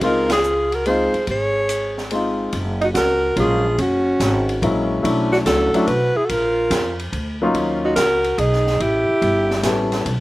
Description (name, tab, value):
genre	jazz, small-group swing and bop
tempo	143 BPM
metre	3/4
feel	swing 68% on 8ths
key	unclear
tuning	A4 = 438 Hz
part	breathy alto saxophone	melody	0.0-9.9 s	F#4 to Db5	-20 LUFS	equal	none
part	dark alto saxophone	second line	0.0-9.9 s	C#4 to Ab4	-23 LUFS	right 2 dB	none
part	warm grand piano	accompaniment	0.0-10.1 s	F#3 to A4	-20 LUFS	left 2 dB	slapback echo
part	upright bass	bass	0.0-10.2 s	F#1 to E#2	-25 LUFS	equal	none
part	open jazz drum kit	drums	0.0-10.2 s	hi-hat, kick drum, ride cymbal, snare drum	-28 LUFS	equal	none
room	little or no reverb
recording	none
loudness	-16 LUFS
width	side -18 dB against mid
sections	0.0-2.5 A section; 2.5-10.2 B section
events	band accent 0.2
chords	0.0 Dbmaj9; 2.5 F#maj9; 3.8 F#7; 5.0 Bm11; 6.3 A#; 7.6 D#m7; 8.8 A9